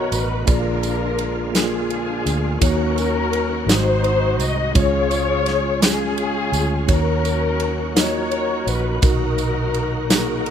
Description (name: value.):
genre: slow gospel.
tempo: 56 BPM (dotted quarters).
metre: 6/8.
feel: straight.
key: unclear.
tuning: A4 = 440 Hz.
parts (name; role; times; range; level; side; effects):
muted studio string section; melody; 0.0-10.5 s; C#4 to D#5; -22 LUFS; left 3 dB; none.
mellow tine electric piano; accompaniment; 0.0-10.5 s; G#2 to D#5; -24 LUFS; left 1 dB; fast stereo tremolo.
bright tonewheel organ; sustained chords; 0.0-10.5 s; D3 to F#4; -31 LUFS; right 5 dB; slow rotary speaker, overdrive, chorus vibrato.
vintage muted fingered electric bass; bass; 0.0-10.5 s; G#1 to D#2; -24 LUFS; right 1 dB; none.
modern studio drum kit; drums; 0.1-10.5 s; kick drum, ride cymbal, snare drum; -20 LUFS; right 1 dB; none.
tambourine; percussion; 0.1-10.4 s; none; -28 LUFS; right 11 dB; none.
room: small room reverb.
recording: rough home demo mix.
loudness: -17 LUFS.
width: side -8 dB against mid.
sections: 0.0-10.5 A section.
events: none.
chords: 0.5 A#7; 2.6 D#m7; 3.7 G#7; 4.8 C#; 6.9 D#m7; 9.0 Bmaj7.